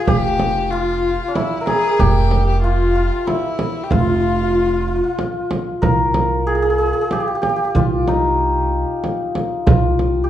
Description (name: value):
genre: Persian modal ensemble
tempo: 94 BPM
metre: 3/4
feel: straight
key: F avaz esfahan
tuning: A4 = 440 Hz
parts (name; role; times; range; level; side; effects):
- santur; melody; 0.0-10.3 s; D4-50c to Bb4; -19 LUFS; left 1 dB; none
- clear kamancheh; second line; 0.0-5.2 s; E4 to Ab4; -22 LUFS; left 4 dB; none
- upright bass; bass; 0.1-10.3 s; F1 to C2; -19 LUFS; right 1 dB; none
- frame drum; percussion; 0.1-10.1 s; none; -20 LUFS; right 2 dB; none
room: moderate large studio reverb, RT60 0.9 s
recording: band playing live in one room, nothing above 10.4 kHz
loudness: -15 LUFS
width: side -11 dB against mid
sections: 0.0-5.8 A section; 5.8-10.3 B section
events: none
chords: none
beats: | 0.08 0.71 1.35 | 2.00 2.63 3.27 | 3.91 4.55 5.19 | 5.83 6.47 7.11 | 7.75 8.39 9.03 | 9.67